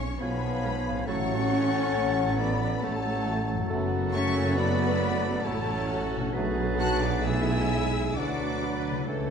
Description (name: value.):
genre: classical, slow romantic movement for symphony orchestra.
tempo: 68 BPM.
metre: 3/4.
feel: rubato.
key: F# minor.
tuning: A4 = 440 Hz.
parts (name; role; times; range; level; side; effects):
clear symphonic violin section; melody; 0.0-9.1 s; A5 to F#6; -37 LUFS; left 4 dB; none.
rich studio violin section; second line; 0.0-9.1 s; A4 to F#5; -39 LUFS; left 3 dB; none.
clear French horn section; sustained chords; 0.0-9.1 s; A3 to F#4; -33 LUFS; left 5 dB; none.
concert harp; arpeggios; 0.0-9.3 s; F#2 to A4; -36 LUFS; left 6 dB; none.
mellow tuba; bass; 0.0-9.3 s; F#1 to D2; -34 LUFS; right 4 dB; none.
warm symphonic cello section; bass; 0.0-9.1 s; A3 to F#4; -36 LUFS; right 3 dB; none.
warm symphonic double bass section; bass; 0.0-9.3 s; F#1 to D2; -31 LUFS; right 3 dB; none.
clear oboe; second line; 0.2-9.3 s; G#5 to A5; -38 LUFS; right 3 dB; none.
mellow clarinet; second line; 0.2-9.3 s; A4 to C#5; -38 LUFS; left 1 dB; none.
silver concert flute; second line; 0.2-9.1 s; C#5 to A5; -36 LUFS; left 2 dB; none.
clear symphonic viola section; accompaniment; 0.2-9.3 s; F#3 to B4; -36 LUFS; right 1 dB; none.
mellow bassoon; accompaniment; 0.2-9.3 s; E3 to F#3; -36 LUFS; equal; none.
dark trombone section; sustained chords; 1.1-9.3 s; E3 to A3; -37 LUFS; right 3 dB; none.
room: wet scoring stage reverb, RT60 1.6 s.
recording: dark, warm production, faint mains hum.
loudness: -24 LUFS.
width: side -6 dB against mid.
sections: 0.0-9.3 A section.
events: none.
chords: 0.0 C#7/B; 1.1 F#m/A; 3.7 F#m; 6.3 Bm7.